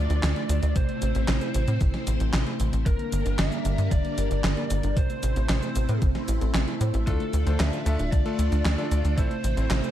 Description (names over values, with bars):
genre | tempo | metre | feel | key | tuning
synthwave | 114 BPM | 4/4 | straight | unclear | A4 = 440 Hz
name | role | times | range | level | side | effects
lead guitar through a small cranked amp | melody | 0.0-9.9 s | A4 to E5 | -34 LUFS | left 1 dB | overdrive, ping-pong delay
string machine, full ensemble | sustained chords | 0.0-9.9 s | G3 to D5 | -32 LUFS | equal | phaser, ensemble chorus, sidechain pumping
thumb-piano-like synth pluck | arpeggios | 0.0-9.9 s | C3 to C5 | -33 LUFS | right 2 dB | chorus, ping-pong delay
tight sequencer bass | bass | 0.0-9.8 s | D1 to A2 | -24 LUFS | equal | sidechain pumping
downlifter | sound effects | 0.0-2.9 s | none | -44 LUFS | right 1 dB | none
gated 80s digital drum machine | drums | 0.1-9.9 s | handclaps, hi-hat, shaker, snare drum | -30 LUFS | equal | gated reverb, gated reverb snare, overdrive
electronic kick drum | drums | 0.8-9.3 s | none | -24 LUFS | equal | overdrive
bright electric grand piano | stabs | 7.1-9.9 s | A3 to C5 | -34 LUFS | left 3 dB | none
room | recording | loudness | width
light reverb | dark, warm production | -22 LUFS | side -12 dB against mid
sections
0.0-9.9 A section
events
none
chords
0.0 Dm; 0.8 Am; 2.9 Gm; 5.0 Am; 7.1 Dm; 9.2 Am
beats
0.23 | 0.76 1.28 1.81 2.34 | 2.86 3.39 3.92 4.44 | 4.97 5.49 6.02 6.55 | 7.07 7.60 8.12 8.65 | 9.18 9.70